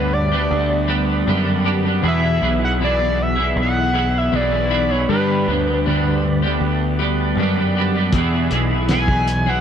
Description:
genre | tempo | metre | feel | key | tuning
psychedelic rock | 79 BPM | 4/4 | straight | unclear | A4 = 441 Hz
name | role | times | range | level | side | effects
overdriven synth lead | melody | 0.0-9.6 s | B4 to G#5 | -22 LUFS | equal | analog delay
percussive tonewheel organ | sustained chords | 0.0-9.6 s | D4 to B5 | -32 LUFS | right 4 dB | none
twelve-string electric guitar | riff | 0.0-9.6 s | E2 to G#4 | -20 LUFS | equal | harmonic tremolo, double-tracked left and right, analog delay
fuzz picked electric bass | bass | 0.0-9.6 s | B1 to G2 | -20 LUFS | equal | overdrive
cloth-damped thuddy drum kit | drums | 8.1-9.5 s | hi-hat, kick drum, snare drum | -22 LUFS | equal | analog delay
room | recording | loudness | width
light reverb, studio reverb | echo-heavy mix | -16 LUFS | side -8 dB against mid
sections
0.0-9.6 A section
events
none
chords
0.0 G; 2.0 E; 5.1 G; 8.1 E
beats
0.51 1.27 | 2.04 2.80 3.56 4.33 | 5.09 5.85 6.61 7.37 | 8.14 8.90

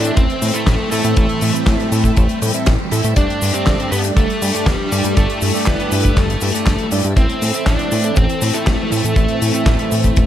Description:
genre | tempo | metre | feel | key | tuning
italo disco | 120 BPM | 4/4 | straight | A minor | A4 = 440 Hz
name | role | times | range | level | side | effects
high-gain lead guitar | melody | 0.0-10.3 s | G3 to D5 | -22 LUFS | left 1 dB | distortion, ping-pong delay
phased string machine | sustained chords | 0.0-10.3 s | E3 to E4 | -23 LUFS | equal | ensemble chorus, phaser
chorused polysynth | stabs | 0.0-10.2 s | G2 to E5 | -24 LUFS | right 5 dB | none
fat analog bass | bass | 0.0-10.3 s | G1 to A2 | -20 LUFS | equal | none
damped 70s drum kit | drums | 0.0-10.3 s | cabasa, handclaps, hi-hat, snare drum | -22 LUFS | left 2 dB | gated reverb
kick drum | drums | 0.2-10.3 s | none | -16 LUFS | equal | none
room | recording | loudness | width
small room ambience | none | -14 LUFS | side -11 dB against mid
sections
0.0-10.3 A section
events
none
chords
0.0 Am; 3.2 Gsus2; 7.2 Am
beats
0.17 0.67 | 1.17 1.67 2.17 2.67 | 3.17 3.67 4.17 4.67 | 5.17 5.67 6.17 6.67 | 7.17 7.67 8.17 8.67 | 9.17 9.67 10.17

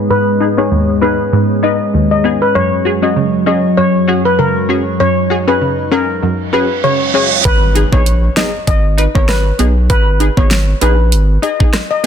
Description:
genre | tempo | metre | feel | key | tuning
dancehall | 98 BPM | 4/4 | swing 56% on 16ths | G# minor | A4 = 435 Hz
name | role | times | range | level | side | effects
lush unison pad | sustained chords | 0.0-7.4 s | F#2 to D#5 | -16 LUFS | right 1 dB | chorus, sidechain pumping, low-pass filter
steel pan | melody | 0.1-12.0 s | A#4 to D#5 | -16 LUFS | left 3 dB | low-pass filter, ping-pong delay
punchy chord stab | accompaniment | 0.1-12.1 s | D#2 to B4 | -16 LUFS | equal | chorus, low-pass filter
reverse cymbal and impact | sound effects | 6.6-9.9 s | none | -18 LUFS | right 5 dB | none
saturated sub bass | bass | 7.5-11.4 s | G#1 to B1 | -13 LUFS | equal | none
pop drum kit | drums | 7.5-12.1 s | hi-hat, kick drum, rim click, snare drum | -14 LUFS | equal | none
room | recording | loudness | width
digital ambience | dense, heavily limited modern master | -10 LUFS | side -8 dB against mid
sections
0.0-7.4 A section; 7.4-12.1 B section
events
filter sweep 0.0-7.4; reverse cymbal 6.6-7.4; impact 7.4-9.9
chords
0.0 G#m; 2.6 F#sus2; 7.4 G#m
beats
| 0.10 0.71 1.33 1.94 | 2.55 3.16 3.78 4.39 | 5.00 5.61 6.22 6.84 | 7.45 8.06 8.67 9.29 | 9.90 10.51 11.12 11.73

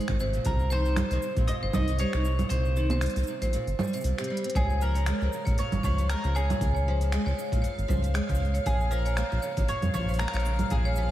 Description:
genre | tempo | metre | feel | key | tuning
folktronica | 117 BPM | 4/4 | swing 56% on 16ths | Db lydian | A4 = 440 Hz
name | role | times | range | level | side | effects
mandolin | melody | 0.0-11.1 s | Ab4 to Eb5 | -35 LUFS | right 1 dB | diffuse ambient delay
picked steel-string acoustic guitar | arpeggios | 0.0-11.1 s | Bb2 to C4 | -34 LUFS | left 1 dB | lush chorus, diffuse ambient delay
organic electronic drum kit | drums | 0.0-11.1 s | cabasa, congas, finger snaps, hi-hat | -35 LUFS | right 2 dB | overdrive, studio reverb
round analog bass | bass | 0.1-11.1 s | G1 to F2 | -27 LUFS | equal | none
kick drum | drums | 0.1-10.8 s | none | -31 LUFS | equal | studio reverb
marimba with hard mallets | second line | 0.2-11.0 s | G4 to Db5 | -34 LUFS | right 1 dB | diffuse ambient delay
backwards swelling texture | texture | 5.4-11.1 s | F5 to F6 | -41 LUFS | equal | built-in reverb
room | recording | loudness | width
moderate lush hall reverb, RT60 2.0 s, small room ambience | dreamy mix soaked in reverb, vinyl crackle | -24 LUFS | side -13 dB against mid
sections
0.0-4.6 A section; 4.6-11.1 A section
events
kick drops out 2.5-4.6; drum fill 4.3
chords
0.5 Cm7; 4.6 Db6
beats
| 0.45 0.97 1.48 1.99 | 2.50 3.02 3.53 4.04 | 4.56 5.07 5.58 6.09 | 6.61 7.12 7.63 8.14 | 8.66 9.17 9.68 10.20 | 10.71

